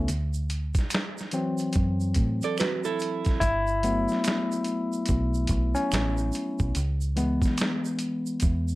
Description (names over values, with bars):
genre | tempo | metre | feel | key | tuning
R&B, neo-soul | 72 BPM | 4/4 | swing 63% on 16ths | unclear | A4 = 442 Hz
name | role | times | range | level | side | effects
barky tine electric piano | accompaniment | 0.0-8.8 s | E3 to E4 | -27 LUFS | left 2 dB | overdrive
deep dub fingered electric bass | bass | 0.0-8.8 s | G1 to A2 | -27 LUFS | equal | none
boom bap sampler-style drum kit | drums | 0.1-8.7 s | finger snaps, hi-hat, kick drum, snare drum | -28 LUFS | equal | none
egg shaker and finger snaps | percussion | 0.1-8.8 s | none | -40 LUFS | right 7 dB | none
hollow-body jazz guitar | second line | 2.4-3.4 s | E4 to D5 | -28 LUFS | right 7 dB | none
room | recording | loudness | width
light reverb | none | -24 LUFS | side -18 dB against mid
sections
0.0-8.8 A section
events
tine electric piano solo 0.0-8.8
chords
0.1 D9; 3.4 Gmaj7; 6.7 C#m7